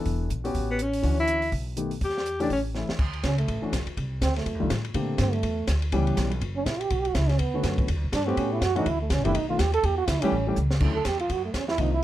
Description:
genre	jazz, small-group swing and bop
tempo	246 BPM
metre	4/4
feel	swing 59% on 8ths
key	D major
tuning	A4 = 441 Hz
part	dark concert grand piano	accompaniment	0.0-11.9 s	D3 to A4	-29 LUFS	left 2 dB	none
part	upright bass	bass	0.0-12.0 s	E1 to Bb2	-27 LUFS	equal	none
part	compact cocktail drum kit	drums	0.1-11.8 s	crash cymbal, hi-hat, kick drum, ride cymbal, snare drum	-32 LUFS	equal	none
part	mellow tenor saxophone	melody	0.7-2.6 s	B3 to G4	-26 LUFS	left 1 dB	none
part	breathy trombone	second line	3.2-12.0 s	A3 to A4	-27 LUFS	right 4 dB	none
room	light reverb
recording	none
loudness	-23 LUFS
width	side -13 dB against mid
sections	0.0-3.0 A section; 3.0-10.8 B section; 10.8-12.0 B section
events	drum fill 2.7, 10.6; trombone solo 3.0-12.0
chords	0.1 Em7; 0.5 A13; 1.0 Dmaj9; 1.5 Baug7; 2.0 Em; 2.5 A; 3.0 Dmaj7(no3); 4.0 Csus2; 4.5 F13; 4.9 Bbmaj13; 5.9 C#m7b5; 6.4 F#; 6.9 Bm9; 7.9 Em7 (rootless); 8.4 A13; 8.9 Dmaj7; 9.3 B7alt; 9.8 Em7; 10.3 A7; 10.8 Dmaj9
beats	| 0.05 0.30 0.54 0.79 | 1.03 1.28 1.52 1.77 | 2.01 2.26 2.50 2.75 | 2.99 3.23 3.48 3.72 | 3.97 4.21 4.46 4.70 | 4.95 5.19 5.43 5.68 | 5.92 6.17 6.41 6.66 | 6.90 7.14 7.39 7.63 | 7.88 8.12 8.37 8.61 | 8.86 9.10 9.34 9.59 | 9.83 10.07 10.32 10.56 | 10.81 11.05 11.29 11.54 | 11.78 12.03

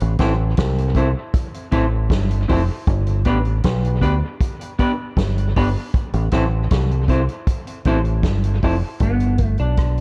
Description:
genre	roots reggae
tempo	78 BPM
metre	4/4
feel	straight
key	G mixolydian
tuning	A4 = 438 Hz
part	deep dub fingered electric bass	bass	0.0-10.0 s	F1 to D2	-21 LUFS	equal	none
part	vintage drum kit	drums	0.0-10.0 s	hi-hat, kick drum, rim click, snare drum	-24 LUFS	equal	none
part	semi-hollow electric guitar	accompaniment	0.2-10.0 s	B3 to C5	-26 LUFS	equal	tape echo
room	small room ambience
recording	echo-heavy mix, cassette tape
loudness	-19 LUFS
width	mono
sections	0.0-9.0 A section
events	none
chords	0.0 Am; 2.9 G; 5.9 Am; 9.0 G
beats	0.58 1.34 2.11 | 2.88 3.64 4.41 5.17 | 5.94 6.71 7.47 8.24 | 9.01 9.77

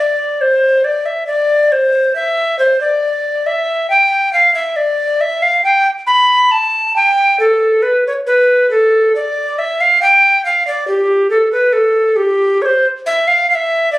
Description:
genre	classical, baroque-style fantasia for unaccompanied recorder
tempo	69 BPM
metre	4/4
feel	rubato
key	unclear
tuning	A4 = 440 Hz
part	tenor recorder	solo	0.0-14.0 s	G4 to B5	-11 LUFS	equal	none
room	moderate large studio reverb, RT60 1.1 s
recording	recorded on a phone in the room, club reverb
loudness	-11 LUFS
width	side -17 dB against mid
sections	0.0-14.0 A section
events	none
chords	none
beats	| 0.41 1.29 2.17 3.04 | 3.91 4.78 5.64 6.51 | 7.39 8.26 9.14 10.01 | 10.87 11.75 12.62 13.50

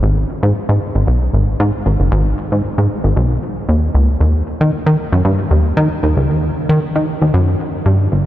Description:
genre	funk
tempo	115 BPM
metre	4/4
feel	straight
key	G# minor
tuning	A4 = 440 Hz
part	plucky analog bass	solo	0.0-8.3 s	F#1 to D#3	-13 LUFS	equal	tape echo
room	wet huge ambient reverb, RT60 7.5 s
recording	dreamy mix soaked in reverb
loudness	-13 LUFS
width	side -14 dB against mid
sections	0.0-8.3 A section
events	none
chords	none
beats	| 0.03 0.55 1.07 1.60 | 2.12 2.64 3.16 3.68 | 4.21 4.73 5.25 5.77 | 6.29 6.82 7.34 7.86

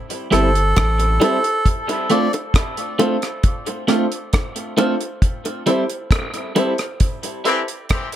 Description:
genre	dub reggae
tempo	67 BPM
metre	4/4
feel	straight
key	D minor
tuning	A4 = 440 Hz
part	deep reggae drum kit	drums	0.1-8.2 s	hi-hat, kick drum, rim click	-20 LUFS	equal	none
part	melodica	melody	0.3-2.3 s	A4 to D5	-22 LUFS	right 1 dB	dub echo
part	clean electric guitar	accompaniment	0.3-7.6 s	G3 to F4	-22 LUFS	right 3 dB	high-pass filter, dub echo
part	dark grand piano	stabs	0.3-7.6 s	D4 to C5	-25 LUFS	left 4 dB	high-pass filter, dub echo
part	soft dub sub bass	bass	0.3-1.2 s	G1 to A1	-18 LUFS	equal	none
part	bongos	percussion	0.8-8.1 s	none	-27 LUFS	equal	none
part	warm horn section	second line	7.5-8.1 s	E3 to G4	-21 LUFS	left 4 dB	high-pass filter
room	light reverb, small room ambience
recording	echo-heavy mix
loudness	-17 LUFS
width	side -11 dB against mid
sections	0.0-8.2 A section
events	break 1.7-8.2; band accent 5.2-8.2; filter sweep 5.2-8.2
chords	0.0 Am7; 1.7 Dm7; 5.2 Am7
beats	0.76 | 1.66 2.55 3.44 4.33 | 5.22 6.11 7.00 7.90

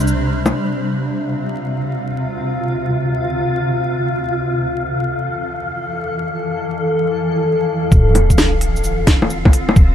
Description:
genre	future garage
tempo	free time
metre	none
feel	none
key	D minor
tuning	A4 = 440 Hz
part	granular cloud pad	sustained chords	0.0-9.9 s	D2 to A4	-19 LUFS	equal	built-in reverb, sidechain pumping
part	soft 808-style bass	bass	0.0-0.5, 7.9-9.9 s	D1 to C2	-20 LUFS	equal	sidechain pumping
part	organic electronic drum kit	drums	0.0-0.5, 7.9-9.9 s	bongos, hi-hat, shaker, snare drum	-17 LUFS	left 1 dB	overdrive
part	wind-like tuned noise texture	texture	0.0-9.9 s	C5 to F5	-26 LUFS	left 3 dB	built-in reverb
part	electronic kick drum	drums	7.9-9.9 s	none	-11 LUFS	equal	none
part	sub drop	sound effects	7.9-9.8 s	none	-21 LUFS	equal	none
room	light reverb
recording	vinyl crackle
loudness	-15 LUFS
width	side -10 dB against mid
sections	0.5-7.9 A section; 7.9-9.9 B section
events	break 0.1-0.5; impact 7.9-9.8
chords	0.0 Csus2; 0.5 Dm7; 4.2 Fmaj7; 7.9 Dm7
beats	free time

